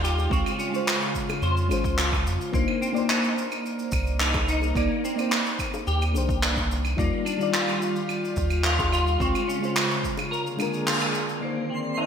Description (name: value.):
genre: sunset chillout.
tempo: 108 BPM.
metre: 4/4.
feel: straight.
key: C minor.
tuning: A4 = 443 Hz.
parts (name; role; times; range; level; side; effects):
mellow FM electric piano; accompaniment; 0.0-12.1 s; Eb3 to Db6; -29 LUFS; moving between left 5 dB and right 5 dB; chorus, tremolo, auto-pan, ping-pong delay.
airy breathy pad; sustained chords; 0.0-12.1 s; Db3 to D5; -32 LUFS; equal; chorus.
clean electric guitar; arpeggios; 0.0-12.1 s; Bb3 to C5; -30 LUFS; left 2 dB; ensemble chorus, low-pass filter, ping-pong delay.
round analog bass; bass; 0.0-9.3 s; Ab1 to F2; -26 LUFS; equal; none.
jazz brush drum kit; drums; 0.0-12.1 s; cabasa, claves, crash cymbal, handclaps; -28 LUFS; equal; low-pass filter on cymbals, low-pass filter on perc, low-pass filter on snare, low-pass filter on room, gated reverb.
bongos; percussion; 0.2-10.7 s; none; -41 LUFS; left 5 dB; none.
electronic kick drum; drums; 0.3-10.1 s; none; -30 LUFS; equal; overdrive.
twinkling granular texture; texture; 11.5-12.1 s; C5 to C6; -33 LUFS; right 2 dB; built-in reverb.
room: moderate lush hall reverb, RT60 2.4 s.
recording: bright 1980s-style digital production.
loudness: -22 LUFS.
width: side -7 dB against mid.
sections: 0.0-11.4 A section.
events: band accent 10.9.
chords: 0.3 Dbmaj7; 2.5 Cm9; 7.0 Ebmaj9; 9.2 Dbmaj7; 10.3 Bb7; 11.4 Cm9.